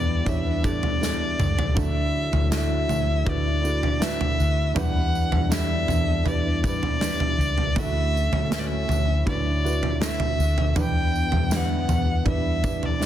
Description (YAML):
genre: pop ballad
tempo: 80 BPM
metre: 4/4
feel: straight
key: unclear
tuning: A4 = 440 Hz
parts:
  - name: dark violin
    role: melody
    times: 0.0-13.1 s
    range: D5 to G5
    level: -28 LUFS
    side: equal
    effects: none
  - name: mellow French horn section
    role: second line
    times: 0.0-13.1 s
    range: G2 to E4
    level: -36 LUFS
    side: left 6 dB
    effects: none
  - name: felt-muted upright piano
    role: accompaniment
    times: 0.0-13.1 s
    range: D3 to C#5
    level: -31 LUFS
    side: right 7 dB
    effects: none
  - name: picked steel-string acoustic guitar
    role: arpeggios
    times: 0.0-13.1 s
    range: E2 to F#4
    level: -35 LUFS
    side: left 9 dB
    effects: none
  - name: vintage muted fingered electric bass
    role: bass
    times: 0.0-13.1 s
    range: C#2 to E2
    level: -26 LUFS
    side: equal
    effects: none
  - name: modern studio drum kit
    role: drums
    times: 0.3-13.1 s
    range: kick drum, snare drum, toms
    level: -25 LUFS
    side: equal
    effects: none
  - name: tambourine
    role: percussion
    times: 0.3-13.1 s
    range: none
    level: -40 LUFS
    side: right 9 dB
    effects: none
room: little or no reverb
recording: dense, heavily limited modern master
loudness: -21 LUFS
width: side -11 dB against mid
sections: 0.0-13.1 A section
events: drum fill 1.0-1.8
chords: 0.0 Em7; 1.8 Dadd9; 4.8 Em7; 7.8 Dadd9; 10.8 Em7